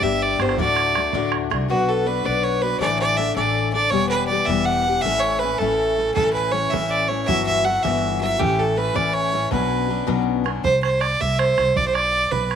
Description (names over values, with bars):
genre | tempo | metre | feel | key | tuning
celtic folk, Celtic jig | 107 BPM (dotted quarters) | 6/8 | straight | B minor | A4 = 440 Hz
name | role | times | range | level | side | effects
clear fiddle | melody | 0.0-12.6 s | F#4 to F#5 | -20 LUFS | right 3 dB | none
picked steel-string acoustic guitar | accompaniment | 0.0-10.6 s | D2 to B4 | -23 LUFS | left 10 dB | none
upright bass | bass | 0.0-12.6 s | E1 to D2 | -27 LUFS | right 1 dB | none
bodhran | percussion | 0.0-1.6, 6.2-12.6 s | none | -28 LUFS | right 8 dB | none
room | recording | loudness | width
wet spring reverb, RT60 1.5 s, small room ambience | 1960s-style stereo with parts hard left and right | -18 LUFS | side -8 dB against mid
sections
0.0-1.7 A section; 1.7-10.6 B section; 10.6-12.6 A section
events
none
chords
0.0 G; 0.6 D; 1.7 Bm; 2.8 Asus4; 3.9 Em; 5.0 A; 7.3 Emadd9/G; 8.4 A; 9.5 Bmadd9; 10.6 N.C.; 11.8 Bm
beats
0.02 | 0.58 1.13 | 1.69 2.25 | 2.81 3.37 | 3.93 4.49 | 5.04 5.60 | 6.16 6.72 | 7.28 7.84 | 8.40 8.96 | 9.52 10.08 | 10.64 11.20 | 11.76 12.32